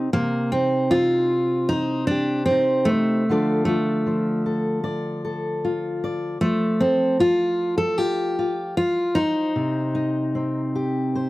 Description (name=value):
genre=acoustic folk duo or small band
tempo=76 BPM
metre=4/4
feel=straight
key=C dorian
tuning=A4 = 441 Hz
part: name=fingerpicked steel-string acoustic guitar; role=accompaniment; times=0.0-11.3 s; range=C3 to D5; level=-25 LUFS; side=left 1 dB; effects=none
part: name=picked steel-string acoustic guitar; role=melody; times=0.1-11.3 s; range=A3 to A4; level=-21 LUFS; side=equal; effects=none
room=little or no reverb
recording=dry, close 1970s-style studio recording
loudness=-20 LUFS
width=side -18 dB against mid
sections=0.1-11.3 A section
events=none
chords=0.1 Cm; 3.3 Dm; 6.4 Fadd9; 9.5 Cm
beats=| 0.13 0.92 1.70 2.48 | 3.27 4.05 4.83 5.62 | 6.40 7.19 7.97 8.76 | 9.55 10.33 11.12